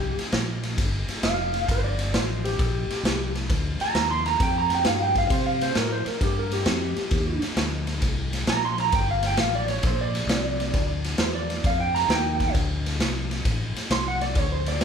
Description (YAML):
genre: electric blues shuffle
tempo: 132 BPM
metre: 4/4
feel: swing 68% on 8ths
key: G minor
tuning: A4 = 440 Hz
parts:
  - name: electric slide guitar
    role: second line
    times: 0.0-14.8 s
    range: G4 to C6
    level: -26 LUFS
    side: right 2 dB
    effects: none
  - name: fingered electric bass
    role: bass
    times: 0.0-14.8 s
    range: F1 to C3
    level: -28 LUFS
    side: equal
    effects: none
  - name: raw garage drum kit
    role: drums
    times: 0.2-14.8 s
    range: kick drum, ride cymbal, snare drum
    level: -25 LUFS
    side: equal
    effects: none
room: moderate large studio reverb, RT60 1.0 s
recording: band playing live in one room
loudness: -22 LUFS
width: side -7 dB against mid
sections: 0.0-14.8 A section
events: electric slide guitar solo 0.0-14.8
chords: 0.0 C5; 1.7 Gm7; 5.3 Cm7; 8.9 Gm7; 12.6 D5